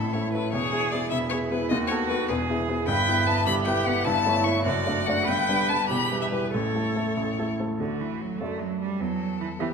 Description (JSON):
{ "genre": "quick classical-period movement for piano trio", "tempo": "93-104 BPM (dotted quarters)", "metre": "6/8", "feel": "rubato", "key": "D major", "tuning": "A4 = 441 Hz", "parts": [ { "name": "rich violin", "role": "melody", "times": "0.0-9.7 s", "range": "D4 to C#6", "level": "-29 LUFS", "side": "left 8 dB", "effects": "none" }, { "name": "clear cello", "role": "second line", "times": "0.0-9.7 s", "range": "D3 to B4", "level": "-29 LUFS", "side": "right 7 dB", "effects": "none" }, { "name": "warm baby grand piano", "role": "accompaniment", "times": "0.0-9.7 s", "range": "E1 to E5", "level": "-26 LUFS", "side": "equal", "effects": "none" } ], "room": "moderate scoring stage reverb, RT60 1.7 s", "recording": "minimal, uncompressed stereo recording", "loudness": "-23 LUFS", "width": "side -6 dB against mid", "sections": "0.0-7.8 A section; 7.8-9.7 B section", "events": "none", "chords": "0.0 A; 0.5 E; 1.7 B7/D#; 2.3 E; 2.9 Em/G; 4.1 A7/G; 4.7 D/F#; 5.3 G; 5.9 Em; 6.5 A; 7.8 D; 8.4 D/F#; 9.0 Em", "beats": "| 0.52 1.11 | 1.70 2.29 | 2.88 3.47 | 4.06 4.66 | 5.27 5.89 | 6.53 7.16 | 7.80 8.40 | 9.00 9.59" }